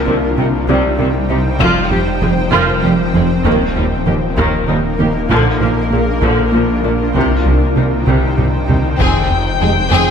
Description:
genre	cinematic, hybrid orchestral and electronic film score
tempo	65 BPM (dotted quarters)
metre	6/8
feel	straight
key	C minor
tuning	A4 = 439 Hz
part	rich studio viola section	accompaniment	0.0-10.1 s	C3 to Ab4	-19 LUFS	equal	none
part	granular cloud pad	sustained chords	0.0-10.1 s	Eb3 to G5	-18 LUFS	left 1 dB	built-in reverb
part	wide detuned saw bass	bass	0.0-10.1 s	Eb1 to C2	-20 LUFS	left 1 dB	chorus
part	felt-muted upright piano	texture	0.0-9.0 s	Bb3 to D5	-28 LUFS	left 3 dB	ping-pong delay
part	rubbery square bass	riff	0.1-10.1 s	C2 to Bb3	-21 LUFS	right 2 dB	none
part	clear symphonic double bass section	bass	0.1-10.0 s	F1 to Eb2	-22 LUFS	right 3 dB	none
part	rich symphonic cello section	bass	0.1-10.0 s	Eb2 to C3	-21 LUFS	right 2 dB	none
part	taiko ensemble	drums	1.6-9.6 s	none	-22 LUFS	left 1 dB	none
part	warm chamber violin section	melody	9.0-10.1 s	G5	-19 LUFS	left 9 dB	none
part	clear symphonic violin section	second line	9.0-10.1 s	Ab4	-18 LUFS	left 2 dB	none
part	mellow French horn section	sustained chords	9.6-9.7 s	Ab3 to G4	-22 LUFS	left 6 dB	none
room	moderate scoring stage reverb, RT60 1.9 s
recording	none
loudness	-12 LUFS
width	side -7 dB against mid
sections	0.0-9.0 A section; 9.0-10.1 B section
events	drum fill 8.1-9.0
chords	0.0 Cm; 1.6 Fmadd9; 3.5 Eb; 5.3 Bb; 7.2 Cm; 9.0 Fmadd9

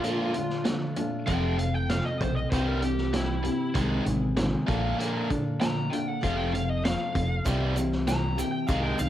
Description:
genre	folk rock and heartland rock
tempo	97 BPM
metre	4/4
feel	straight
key	C mixolydian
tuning	A4 = 436 Hz
part	lead guitar through a small cranked amp	melody	0.0-9.1 s	E4 to Bb5	-33 LUFS	left 1 dB	overdrive, cassette tape, tape echo
part	picked steel-string acoustic guitar	accompaniment	0.0-9.1 s	F2 to A4	-32 LUFS	left 4 dB	none
part	biting overdriven guitar	riff	0.0-9.1 s	F2 to Bb3	-30 LUFS	right 2 dB	none
part	vintage drum kit	drums	0.0-9.1 s	hi-hat, kick drum, snare drum	-32 LUFS	right 1 dB	cassette tape
part	deep dub picked electric bass	bass	1.3-9.1 s	F1 to C2	-30 LUFS	equal	none
part	egg shaker	percussion	7.5-9.1 s	none	-44 LUFS	right 9 dB	none
room	light reverb, studio reverb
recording	home recording on cassette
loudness	-25 LUFS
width	side -12 dB against mid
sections	0.0-9.1 A section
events	lead electric guitar solo 0.0-9.1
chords	0.0 Bbmaj7; 1.3 Fmaj7; 2.5 C; 3.8 Ab; 4.7 Bbmaj7; 6.2 Fmaj7; 7.5 C

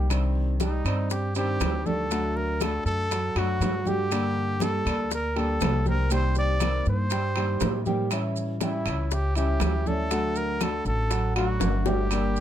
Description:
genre	latin, Cuban son and guajira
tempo	120 BPM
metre	4/4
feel	straight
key	unclear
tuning	A4 = 440 Hz
part	nylon-string guitar	accompaniment	0.0-12.4 s	C3 to G4	-32 LUFS	left 5 dB	none
part	dark concert grand piano	arpeggios	0.0-12.4 s	F#3 to G5	-32 LUFS	right 4 dB	none
part	upright bass	bass	0.0-12.4 s	G1 to A2	-27 LUFS	equal	none
part	bongos	percussion	0.1-12.0 s	none	-34 LUFS	left 12 dB	none
part	claves	percussion	0.1-12.4 s	none	-38 LUFS	left 8 dB	none
part	congas	percussion	0.1-12.4 s	none	-34 LUFS	right 2 dB	none
part	maracas	percussion	0.1-12.4 s	none	-39 LUFS	right 5 dB	none
part	timbales	percussion	0.1-12.4 s	none	-35 LUFS	right 6 dB	none
part	breathy trumpet	melody	0.6-12.4 s	Eb4 to D5	-30 LUFS	equal	none
room	light reverb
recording	close, detailed microphones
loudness	-23 LUFS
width	side -10 dB against mid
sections	0.0-12.1 A section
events	drum fill 11.6-12.1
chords	0.1 Cmadd9; 2.1 D; 4.1 Gm; 6.1 Cm7; 8.1 A7; 10.1 D

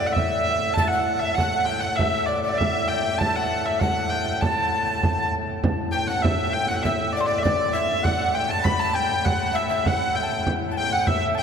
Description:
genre	medieval dance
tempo	99 BPM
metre	2/4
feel	straight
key	unclear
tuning	A4 = 441 Hz
part	clear hurdy-gurdy	melody	0.0-11.4 s	C5 to B5	-24 LUFS	right 1 dB	none
part	breathy mellow tenor recorder	second line	0.0-11.4 s	D5 to B5	-27 LUFS	left 5 dB	none
part	pedal harmonium	drone	0.0-11.4 s	A2	-32 LUFS	equal	none
part	frame drum	percussion	0.2-11.4 s	none	-26 LUFS	right 2 dB	none
room	wet cathedral reverb, RT60 6.3 s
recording	dark, warm production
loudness	-20 LUFS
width	side -7 dB against mid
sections	0.0-5.6 A section; 5.6-11.4 B section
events	none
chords	none

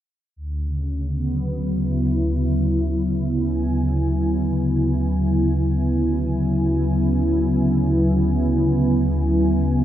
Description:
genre	ambient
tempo	free time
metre	none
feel	none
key	unclear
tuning	A4 = 441 Hz
part	warm analog pad	sustained chords	0.4-9.8 s	D2 to G#5	-18 LUFS	equal	chorus
room	wet cathedral reverb, RT60 6.7 s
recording	dark, warm production, nothing above 7.6 kHz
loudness	-18 LUFS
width	side -11 dB against mid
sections	0.4-9.8 A section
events	filter sweep on analog synth pad 0.4-9.8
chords	0.4 C#m7/D

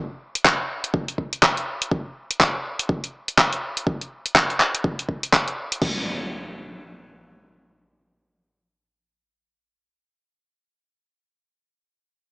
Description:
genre	deep house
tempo	123 BPM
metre	4/4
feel	swing 60% on 16ths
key	none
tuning	none
part	deep house drum kit	drums	0.4-5.9 s	crash cymbal, handclaps, hi-hat	-19 LUFS	equal	cassette tape
part	electronic kick drum	drums	0.5-5.9 s	none	-24 LUFS	equal	cassette tape
part	impact	sound effects	5.8-9.9 s	none	-33 LUFS	equal	none
room	wet spring reverb, RT60 1.8 s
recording	home recording on cassette, small speaker sound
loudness	-20 LUFS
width	side -30 dB against mid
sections	0.0-5.8 A section; 5.8-9.7 B section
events	none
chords	none

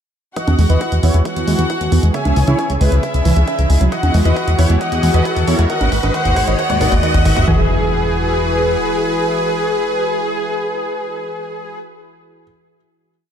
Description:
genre	uplifting trance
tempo	135 BPM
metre	4/4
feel	straight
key	E major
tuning	A4 = 444 Hz
part	dense compressed supersaw	melody	0.4-11.8 s	E4 to F#5	-21 LUFS	equal	sidechain pumping, low-pass filter, tape echo
part	dark concert grand piano	second line	0.4-12.4 s	G#4 to F#5	-30 LUFS	equal	none
part	warm symphonic violin section	second line	0.4-11.8 s	E4 to G#5	-22 LUFS	left 2 dB	digital delay
part	lush unison pad	sustained chords	0.4-11.8 s	C#3 to B4	-26 LUFS	equal	chorus, sidechain pumping
part	wide unison pluck	arpeggios	0.4-7.7 s	C#2 to E4	-21 LUFS	right 3 dB	sidechain pumping, digital delay
part	electronic hi-hat and congas	drums	0.4-7.5 s	none	-27 LUFS	right 3 dB	high-pass filter on hats, high-pass filter on perc, high-pass filter on room
part	electronic kick drum	drums	0.4-7.6 s	none	-24 LUFS	equal	high-pass filter on kick
part	riser and impact	sound effects	1.8-12.5 s	none	-24 LUFS	left 1 dB	none
part	plucky analog bass	bass	0.5-8.8 s	G#1 to G#2	-15 LUFS	equal	sidechain pumping
room	moderate recital hall reverb, RT60 1.7 s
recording	dark, warm production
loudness	-13 LUFS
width	side -8 dB against mid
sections	0.4-7.5 build; 7.5-11.0 final chord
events	build-up 0.4-7.5; filter sweep on supersaw synth 0.4-7.5; riser 1.8-7.5; drum fill 3.9-7.5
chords	0.4 Eadd9; 2.1 C#m; 3.9 Eadd9; 5.7 G#m7; 7.5 Eadd9

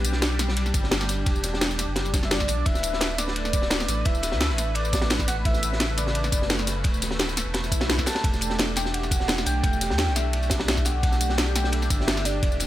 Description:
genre	liquid drum and bass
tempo	172 BPM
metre	4/4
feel	straight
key	E dorian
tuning	A4 = 441 Hz
part	warm velvety synth lead	melody	0.0-12.7 s	B4 to A5	-30 LUFS	equal	chorus, tremolo, digital delay
part	warm analog pad	sustained chords	0.0-12.7 s	C#3 to B4	-31 LUFS	equal	chorus
part	warm sub bass	bass	0.0-12.7 s	D1 to E2	-28 LUFS	equal	tube saturation
part	crunchy breakbeat drum kit	drums	0.0-12.7 s	ride cymbal, snare drum	-31 LUFS	equal	high-pass filter on cymbals, studio reverb, high-pass filter on snare, high-pass filter on room
part	garage drum kit	drums	0.0-12.7 s	hi-hat, snare drum, tambourine	-27 LUFS	equal	studio reverb
part	electronic kick drum	drums	0.7-12.5 s	none	-25 LUFS	equal	studio reverb
part	swell	sound effects	7.6-8.2 s	none	-35 LUFS	left 3 dB	none
room	little or no reverb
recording	none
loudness	-22 LUFS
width	side -14 dB against mid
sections	0.0-12.7 A section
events	swell 7.6-8.2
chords	0.0 Em9; 2.7 D5; 8.2 Em9

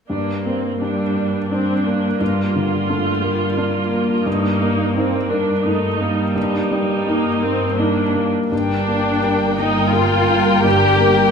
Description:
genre	cinematic, emotional film score for orchestra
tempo	85 BPM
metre	3/4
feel	rubato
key	unclear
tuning	A4 = 441 Hz
part	rich studio viola section	accompaniment	0.1-11.3 s	G3 to G4	-20 LUFS	right 1 dB	none
part	warm concert grand piano	accompaniment	0.1-11.3 s	G2 to Bb4	-20 LUFS	left 1 dB	none
part	warm studio cello section	bass	0.1-11.3 s	G2	-23 LUFS	right 2 dB	none
part	warm studio violin section	second line	8.5-11.3 s	Bb4 to G5	-20 LUFS	left 7 dB	none
part	dark studio double bass section	bass	8.5-11.3 s	G1	-25 LUFS	right 6 dB	none
room	moderate concert hall reverb, RT60 1.9 s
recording	minimal, uncompressed stereo recording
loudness	-16 LUFS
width	side -6 dB against mid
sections	0.1-8.5 A section; 8.5-11.3 B section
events	none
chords	0.1 Gm; 4.3 Eb/G; 8.5 Gm

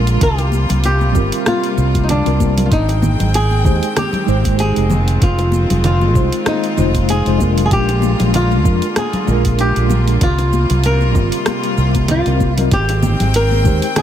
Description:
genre	sunset chillout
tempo	96 BPM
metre	4/4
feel	swing 56% on 16ths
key	unclear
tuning	A4 = 443 Hz
part	flamenco guitar	melody	0.0-14.0 s	D4 to Bb4	-20 LUFS	left 1 dB	tape echo
part	mellow tine electric piano	accompaniment	0.0-13.9 s	G3 to C5	-21 LUFS	moving between left 6 dB and right 7 dB	medium stereo tremolo, auto-pan
part	clear chamber string section	sustained chords	0.0-14.0 s	C3 to G5	-23 LUFS	left 1 dB	none
part	fretless electric bass	bass	0.0-13.8 s	F1 to F2	-15 LUFS	equal	lush chorus
part	smooth R&B drum kit	drums	0.1-14.0 s	cabasa, congas, hi-hat, rim click	-23 LUFS	right 3 dB	none
part	electronic kick drum	drums	0.2-13.8 s	none	-16 LUFS	equal	none
part	bongos and congas	percussion	0.4-14.0 s	none	-24 LUFS	left 4 dB	none
room	light reverb, small room ambience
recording	none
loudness	-12 LUFS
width	side -10 dB against mid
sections	0.0-14.0 A section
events	none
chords	0.2 C7sus4; 2.7 Abmaj7; 4.9 Fm7; 7.7 Bb7; 10.2 C7sus4; 12.7 Abmaj7

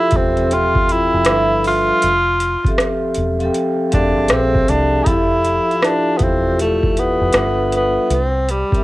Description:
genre	lo-fi hip hop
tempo	79 BPM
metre	4/4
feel	swing 65% on 16ths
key	F major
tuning	A4 = 442 Hz
part	breathy tenor saxophone	melody	0.0-8.8 s	G3 to F4	-17 LUFS	equal	low-pass filter
part	vibraphone with medium mallets	accompaniment	0.0-8.8 s	F3 to G5	-19 LUFS	equal	cassette tape, low-pass filter
part	deep dub fingered electric bass	bass	0.1-8.6 s	E1 to C2	-22 LUFS	equal	none
part	booming analog drum machine	drums	0.1-8.8 s	hi-hat, kick drum, rim click	-19 LUFS	equal	overdrive, cassette tape
room	light reverb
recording	home recording on cassette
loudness	-14 LUFS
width	side -18 dB against mid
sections	0.0-5.1 A section; 5.1-8.8 B section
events	none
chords	0.0 Fmaj9; 1.3 G13; 2.0 Fmaj9; 7.3 G13; 8.1 C7(no3)

